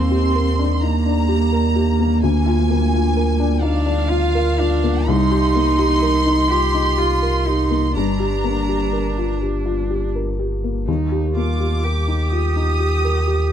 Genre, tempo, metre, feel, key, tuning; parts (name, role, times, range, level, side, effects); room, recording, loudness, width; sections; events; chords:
neoclassical piano and strings; 42 BPM (dotted quarters); 6/8; rubato; Eb major; A4 = 440 Hz
rich studio violin section; melody; 0.0-13.5 s; F5 to Eb6; -24 LUFS; right 1 dB
warm cello; second line; 0.0-13.5 s; Bb3 to G4; -22 LUFS; right 6 dB
felt-muted upright piano; accompaniment; 0.0-13.5 s; C2 to Bb4; -21 LUFS; left 4 dB
sub bass with octave; bass; 0.0-13.5 s; G1 to Eb2; -20 LUFS; equal
light reverb; dark, warm production; -16 LUFS; side -9 dB against mid
0.0-13.5 A section
0.0 Ebmaj7; 2.2 Bb7/D; 5.1 Cm7; 8.0 Gm7; 10.9 Ebmaj7